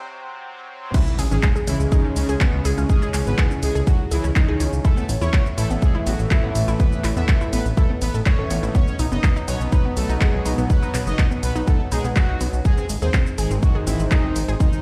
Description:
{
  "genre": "melodic techno",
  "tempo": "123 BPM",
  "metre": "4/4",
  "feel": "straight",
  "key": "C# minor",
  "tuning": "A4 = 440 Hz",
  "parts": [
    { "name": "brassy analog pad", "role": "stabs", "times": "0.0-14.3 s", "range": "G#2 to C#4", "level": "-31 LUFS", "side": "equal", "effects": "chorus, sidechain pumping, digital delay" },
    { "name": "analog synth brass", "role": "melody", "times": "0.9-14.8 s", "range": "B3 to E5", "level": "-33 LUFS", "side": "equal", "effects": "chorus, sidechain pumping, delay" },
    { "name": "soft supersaw", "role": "second line", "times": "0.9-14.8 s", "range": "B2 to E4", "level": "-37 LUFS", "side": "equal", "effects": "sidechain pumping, digital delay" },
    { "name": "dark analog pad", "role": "sustained chords", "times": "2.2-14.8 s", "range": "A3 to F#5", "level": "-35 LUFS", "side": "equal", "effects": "chorus, phaser, sidechain pumping" },
    { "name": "unison pluck", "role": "arpeggios", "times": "0.9-14.7 s", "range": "B3 to A4", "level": "-33 LUFS", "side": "equal", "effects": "sidechain pumping, digital delay" },
    { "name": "electronic kick drum", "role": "drums", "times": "0.9-14.7 s", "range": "none", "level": "-20 LUFS", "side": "equal", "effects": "none" },
    { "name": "punchy analog drum machine", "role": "drums", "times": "0.9-14.8 s", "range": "crash cymbal, handclaps, hi-hat, shaker", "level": "-32 LUFS", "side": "equal", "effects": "overdrive, sidechain pumping on toms, sidechain pumping on perc, sidechain pumping on hats, sidechain pumping on cymbals" },
    { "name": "impact", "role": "sound effects", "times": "0.9-2.9 s", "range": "none", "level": "-30 LUFS", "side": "equal", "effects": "none" },
    { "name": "fat analog bass", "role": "bass", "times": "1.2-14.6 s", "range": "F#1 to E2", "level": "-25 LUFS", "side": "equal", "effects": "sidechain pumping, high-pass filter" }
  ],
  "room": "light reverb",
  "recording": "played on a big sound system in a bare room, stone room reverb, high-pass filter",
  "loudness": "-20 LUFS",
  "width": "mono",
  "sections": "0.9-14.8 A section",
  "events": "break 0.0-0.9; drop 0.9-14.8; impact 0.9-2.9",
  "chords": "0.0 N.C.; 0.9 C#m; 4.8 Aadd9; 8.7 Badd9; 12.7 G#"
}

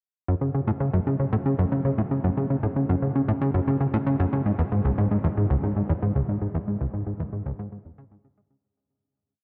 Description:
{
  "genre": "ambient",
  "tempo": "115 BPM",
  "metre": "4/4",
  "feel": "straight",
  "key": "F# minor",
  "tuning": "A4 = 439 Hz",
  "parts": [
    { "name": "plucky analog bass", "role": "solo", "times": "0.3-8.6 s", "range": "C#2 to G#3", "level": "-25 LUFS", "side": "equal", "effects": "delay" }
  ],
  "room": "wet huge ambient reverb, RT60 7.7 s",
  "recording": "dark, warm production",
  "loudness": "-25 LUFS",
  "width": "mono",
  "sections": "0.3-8.6 A section",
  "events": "fade-out 5.8-8.6",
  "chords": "none"
}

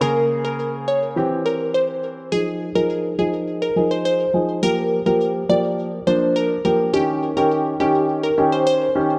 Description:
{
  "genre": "pop",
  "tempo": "104 BPM",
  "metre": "4/4",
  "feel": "straight",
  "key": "F minor",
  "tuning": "A4 = 440 Hz",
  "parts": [
    { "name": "glassy wavetable pluck", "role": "melody", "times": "0.0-9.1 s", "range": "G4 to D5", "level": "-23 LUFS", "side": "equal", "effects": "chorus, digital delay" },
    { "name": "clear grand piano", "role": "accompaniment", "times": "0.0-9.2 s", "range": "Db3 to Ab4", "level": "-23 LUFS", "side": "equal", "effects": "low-pass filter" }
  ],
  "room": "wet lush hall reverb, RT60 2.4 s",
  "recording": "dark, warm production",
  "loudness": "-20 LUFS",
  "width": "mono",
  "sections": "0.0-2.3 A section; 2.3-9.2 B section",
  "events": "build-up 2.3-9.2; filter sweep on grand piano 2.3-9.2",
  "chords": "0.0 Bbm7; 1.2 C; 2.3 Fm7; 4.6 Gm7; 6.9 Eb7"
}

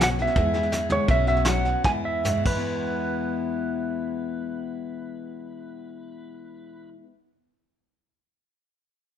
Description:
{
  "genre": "honky-tonk and classic country",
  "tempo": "139-173 BPM",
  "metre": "4/4",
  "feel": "straight",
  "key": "E major",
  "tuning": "A4 = 440 Hz",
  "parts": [
    { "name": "pedal steel guitar", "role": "melody", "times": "0.0-6.9 s", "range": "B4 to G#5", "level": "-27 LUFS", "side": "right 2 dB", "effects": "none" },
    { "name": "picked steel-string acoustic guitar", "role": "accompaniment", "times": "0.0-7.1 s", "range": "E2 to G#4", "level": "-29 LUFS", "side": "left 3 dB", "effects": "none" },
    { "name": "upright bass", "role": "bass", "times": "0.0-7.0 s", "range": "B1 to E2", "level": "-30 LUFS", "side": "equal", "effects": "none" },
    { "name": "soft brush drum kit", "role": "drums", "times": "0.0-2.6 s", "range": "crash cymbal, hi-hat, kick drum, snare drum, toms", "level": "-26 LUFS", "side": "equal", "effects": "none" }
  ],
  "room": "light reverb",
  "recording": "minimal, uncompressed stereo recording",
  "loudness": "-22 LUFS",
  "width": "side -9 dB against mid",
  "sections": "0.0-1.1 A section; 1.1-2.7 B section; 2.7-6.1 C section",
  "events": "slowing down 0.0-2.7; drum fill 0.7-1.1, 1.8-2.7",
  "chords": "0.4 E; 1.1 Bsus2; 1.8 E"
}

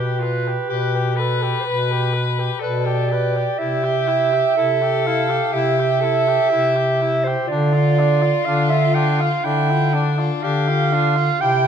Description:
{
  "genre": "classical, lyrical piece for single-reed quartet",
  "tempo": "62 BPM",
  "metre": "4/4",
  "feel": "rubato",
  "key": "unclear",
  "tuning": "A4 = 439 Hz",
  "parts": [
    { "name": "warm soprano saxophone", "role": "melody", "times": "0.0-11.7 s", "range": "D4 to B4", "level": "-25 LUFS", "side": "left 8 dB", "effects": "none" },
    { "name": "warm clarinet", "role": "second line", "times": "0.0-11.7 s", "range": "A4 to G5", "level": "-20 LUFS", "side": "right 6 dB", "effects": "none" },
    { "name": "warm tenor saxophone", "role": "accompaniment", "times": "0.0-11.7 s", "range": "D4 to B4", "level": "-26 LUFS", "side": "left 5 dB", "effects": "none" },
    { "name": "mellow bass clarinet", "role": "bass", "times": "0.0-11.7 s", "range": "B2 to D3", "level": "-21 LUFS", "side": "equal", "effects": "none" }
  ],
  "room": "moderate scoring stage reverb, RT60 2.0 s",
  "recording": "none",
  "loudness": "-16 LUFS",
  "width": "side -8 dB against mid",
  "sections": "0.0-11.7 A section",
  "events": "none",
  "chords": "0.0 G/B; 3.6 C; 7.5 Dmadd11"
}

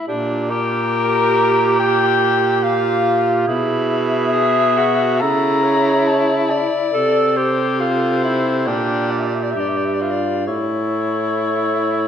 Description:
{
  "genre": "classical, lyrical piece for single-reed quartet",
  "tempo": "69 BPM",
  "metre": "4/4",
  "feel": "uneven beats, rubato",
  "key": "unclear",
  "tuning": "A4 = 440 Hz",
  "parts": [
    { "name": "warm tenor saxophone", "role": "accompaniment", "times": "0.0-12.1 s", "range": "D4 to A4", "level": "-21 LUFS", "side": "left 2 dB", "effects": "none" },
    { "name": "dark clarinet", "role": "second line", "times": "0.1-12.1 s", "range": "G4 to C#5", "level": "-21 LUFS", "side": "right 6 dB", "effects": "none" },
    { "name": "mellow baritone saxophone", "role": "bass", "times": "0.1-12.1 s", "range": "G2 to C#3", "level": "-21 LUFS", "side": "right 2 dB", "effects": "none" },
    { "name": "mellow soprano saxophone", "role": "melody", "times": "0.5-12.1 s", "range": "Bb4 to Bb5", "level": "-20 LUFS", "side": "left 7 dB", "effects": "none" }
  ],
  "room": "wet recital hall reverb, RT60 1.3 s",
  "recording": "none",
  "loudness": "-15 LUFS",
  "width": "side -8 dB against mid",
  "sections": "0.0-12.1 A section",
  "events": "none",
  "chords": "0.1 Gm/Bb; 3.5 E/B; 5.2 A/C#; 6.9 Am/C; 8.7 Gm/Bb; 10.5 A"
}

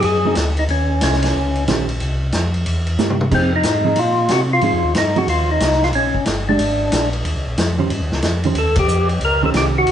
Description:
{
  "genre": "soul jazz organ trio",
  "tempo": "183 BPM",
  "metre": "4/4",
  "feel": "swing 64% on 8ths",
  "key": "Eb mixolydian",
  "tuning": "A4 = 440 Hz",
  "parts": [
    { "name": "percussive tonewheel organ", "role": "melody", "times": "0.0-9.9 s", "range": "C4 to Bb4", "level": "-18 LUFS", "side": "left 1 dB", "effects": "slow rotary speaker, overdrive" },
    { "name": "hollow-body jazz guitar", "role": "accompaniment", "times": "0.0-9.9 s", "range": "Eb3 to C5", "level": "-22 LUFS", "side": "right 4 dB", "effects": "none" },
    { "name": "mellow tonewheel organ", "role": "bass", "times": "0.0-9.9 s", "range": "G1 to C3", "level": "-20 LUFS", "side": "equal", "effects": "chorus vibrato, slow rotary speaker" },
    { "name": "vintage drum kit", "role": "drums", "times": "0.0-9.9 s", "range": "crash cymbal, hi-hat, kick drum, ride cymbal, snare drum, toms", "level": "-22 LUFS", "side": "equal", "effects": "none" }
  ],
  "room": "moderate large studio reverb, RT60 1.4 s",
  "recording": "band playing live in one room, nothing above 10.3 kHz",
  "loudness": "-15 LUFS",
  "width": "side -10 dB against mid",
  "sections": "0.0-8.6 A section; 8.6-9.9 A section",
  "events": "drum fill 3.0-3.3; band accent 8.7",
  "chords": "0.0 Adim7 (rootless); 0.7 Eb6; 2.0 C7; 3.3 Fm7; 5.9 Bb6; 7.2 Eb13"
}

